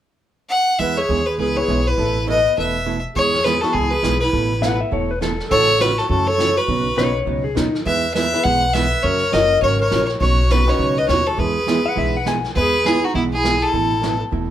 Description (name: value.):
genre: country, western swing.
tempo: 204 BPM.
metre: 4/4.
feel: swing 60% on 8ths.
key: E major.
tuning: A4 = 439 Hz.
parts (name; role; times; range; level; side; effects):
clear fiddle; melody; 0.5-14.2 s; E4 to F#5; -19 LUFS; left 1 dB; none.
breathy clarinet; second line; 0.8-14.2 s; B3 to B4; -23 LUFS; right 2 dB; none.
archtop guitar, miked and amplified; accompaniment; 0.8-14.5 s; B2 to B4; -24 LUFS; right 6 dB; none.
upright bass; bass; 0.8-14.5 s; E1 to F#2; -23 LUFS; left 1 dB; none.
clear upright piano; accompaniment; 1.6-14.2 s; A#3 to B4; -26 LUFS; left 2 dB; none.
vintage brush drum kit; drums; 3.2-14.5 s; brushed snare drum, hi-hat, kick drum, snare drum; -28 LUFS; equal; none.
clean lap steel guitar; second line; 4.6-7.8, 11.9-12.5 s; D#4 to G#5; -23 LUFS; left 4 dB; none.
room: moderate large studio reverb, RT60 0.8 s.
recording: band playing live in one room.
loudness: -16 LUFS.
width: side -11 dB against mid.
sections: 0.8-3.2 A section; 3.2-12.6 B section; 12.6-14.5 B section.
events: none.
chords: 0.0 N.C.; 0.8 E; 2.0 Asus2; 3.2 E; 4.3 Asus2; 5.5 F#m7/A; 6.7 Badd9; 7.9 E; 9.0 F#; 10.2 Badd9; 11.4 E; 13.7 Asus2.